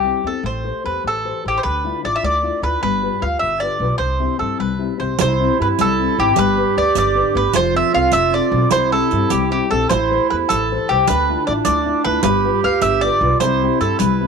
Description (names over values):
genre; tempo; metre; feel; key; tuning
italian folk, Italian serenade; 102 BPM (dotted quarters); 6/8; straight; C major; A4 = 440 Hz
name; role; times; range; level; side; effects
mandolin; melody; 0.0-14.3 s; G4 to F5; -18 LUFS; equal; none
nylon-string guitar; accompaniment; 0.0-14.3 s; C3 to C5; -22 LUFS; left 12 dB; none
upright bass; bass; 0.0-14.3 s; F1 to G2; -23 LUFS; right 1 dB; transformer saturation
warm clarinet; second line; 5.2-14.3 s; D4 to G4; -21 LUFS; right 15 dB; none
riq; percussion; 5.2-14.2 s; none; -23 LUFS; right 12 dB; none
room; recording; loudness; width
light reverb, studio ambience; 1960s-style stereo with parts hard left and right; -15 LUFS; side -5 dB against mid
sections
0.0-5.2 A section; 5.2-14.3 A section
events
none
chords
0.4 Am7; 1.6 Dmadd9; 2.8 G7; 4.0 C; 6.4 G; 7.5 F; 8.7 C; 9.9 Am7; 11.1 Dmadd9; 12.2 G7; 13.4 C